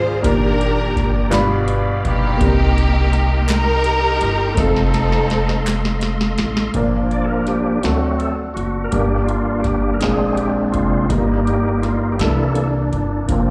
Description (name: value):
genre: slow gospel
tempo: 55 BPM (dotted quarters)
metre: 6/8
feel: straight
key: Bb major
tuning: A4 = 440 Hz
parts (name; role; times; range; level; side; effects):
- warm studio string section; melody; 0.0-6.0 s; Bb3 to C5; -22 LUFS; equal; none
- warm upright piano; accompaniment; 0.0-13.5 s; G2 to B5; -25 LUFS; equal; slapback echo
- bright tonewheel organ; sustained chords; 0.0-13.5 s; E3 to C6; -24 LUFS; equal; fast rotary speaker, chorus vibrato
- upright bass; bass; 0.0-13.5 s; F1 to D2; -24 LUFS; equal; none
- booming analog drum machine; drums; 0.2-13.5 s; hi-hat, kick drum, snare drum; -24 LUFS; equal; none
- group handclap; percussion; 1.3-6.0 s; none; -32 LUFS; equal; none
room: light reverb, small room reverb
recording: live gig heard through the venue's PA, club reverb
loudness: -18 LUFS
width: mono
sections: 0.0-6.7 A section; 6.7-13.5 B section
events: drum fill 4.6-6.7; tonewheel organ solo 6.7-13.5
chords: 0.2 Ebmaj7/Bb; 1.3 G7; 2.4 Cm7; 4.6 F7; 6.7 Bb; 7.8 D7; 8.9 Gm; 10.0 Bb7; 11.1 Eb/G; 12.2 C13